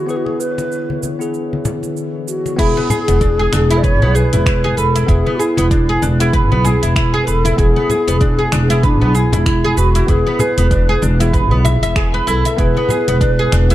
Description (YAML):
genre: organic downtempo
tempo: 96 BPM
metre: 4/4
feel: swing 58% on 16ths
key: E mixolydian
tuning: A4 = 445 Hz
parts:
  - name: breathy mellow low Native American-style wooden flute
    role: melody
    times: 0.0-13.7 s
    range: D4 to D5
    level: -20 LUFS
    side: equal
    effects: ping-pong delay
  - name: bell-like tine electric piano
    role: accompaniment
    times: 0.0-13.7 s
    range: B3 to B4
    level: -22 LUFS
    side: left 3 dB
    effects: sidechain pumping, ping-pong delay
  - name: bowed-like drone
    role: sustained chords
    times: 0.0-2.5 s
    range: D3 to C#5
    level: -28 LUFS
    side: left 2 dB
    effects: built-in reverb, sidechain pumping
  - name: deep house drum kit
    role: drums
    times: 0.1-13.7 s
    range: cabasa, crash cymbal, finger snaps, hi-hat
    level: -26 LUFS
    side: right 2 dB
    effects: small room ambience
  - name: congas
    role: percussion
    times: 0.3-13.7 s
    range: none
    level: -22 LUFS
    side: left 2 dB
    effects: none
  - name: oud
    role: arpeggios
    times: 2.6-13.7 s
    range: B3 to E5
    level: -19 LUFS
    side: right 1 dB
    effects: ping-pong delay
  - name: upright bass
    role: bass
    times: 2.6-13.7 s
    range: E1 to B1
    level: -15 LUFS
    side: equal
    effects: tube saturation
  - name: electronic kick drum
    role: drums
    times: 2.6-13.4 s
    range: none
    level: -17 LUFS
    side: equal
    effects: small room ambience
room: small room ambience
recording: dark, warm production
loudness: -12 LUFS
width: side -14 dB against mid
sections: 0.0-2.6 A section; 2.6-13.7 B section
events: none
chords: 0.0 E7